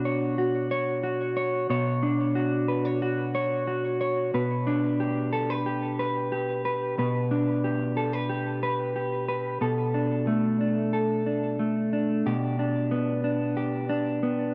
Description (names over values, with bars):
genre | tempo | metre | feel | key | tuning
dream pop | 91 BPM | 4/4 | straight | unclear | A4 = 440 Hz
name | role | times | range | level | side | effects
mellow electric guitar | solo | 0.0-14.5 s | B2 to C#5 | -27 LUFS | equal | subtle chorus, digital delay
room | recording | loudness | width
moderate plate reverb, RT60 3.4 s | none | -27 LUFS | mono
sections
0.0-9.6 A section; 9.6-14.5 B section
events
none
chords
0.0 Dmaj7/B; 4.3 G/B; 9.6 Bm7; 12.3 G/B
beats
0.39 1.05 | 1.71 2.37 3.02 3.68 | 4.34 5.00 5.66 6.32 | 6.98 7.64 8.30 8.96 | 9.62 10.28 10.94 11.60 | 12.26 12.91 13.57 14.23